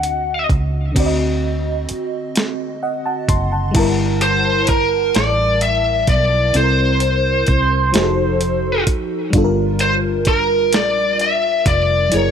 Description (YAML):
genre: slow six-eight R&B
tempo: 43 BPM (dotted quarters)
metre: 6/8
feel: straight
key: G dorian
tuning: A4 = 442 Hz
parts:
  - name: bluesy overdriven lead guitar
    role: melody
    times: 0.0-12.3 s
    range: Bb4 to F#5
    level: -17 LUFS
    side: left 1 dB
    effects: distortion
  - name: FM electric piano with soft pad layer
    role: accompaniment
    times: 0.0-12.3 s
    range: C3 to C6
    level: -21 LUFS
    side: equal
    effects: chorus
  - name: vintage muted fingered electric bass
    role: bass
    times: 0.0-12.3 s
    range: F1 to D2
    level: -20 LUFS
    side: right 1 dB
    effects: none
  - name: dusty soul sampler-style drum kit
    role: drums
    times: 0.0-12.3 s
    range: crash cymbal, hi-hat, kick drum, snare drum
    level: -19 LUFS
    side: right 1 dB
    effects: none
room: little or no reverb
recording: none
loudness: -14 LUFS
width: side -8 dB against mid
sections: 1.0-3.7 A section; 3.7-12.3 B section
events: none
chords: 0.0 D7b9; 3.7 Gm69; 6.5 C7; 7.9 F7b9; 9.3 Gm7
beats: | 0.96 2.35 | 3.75 5.14 | 6.54 7.93 | 9.33 10.72 | 12.12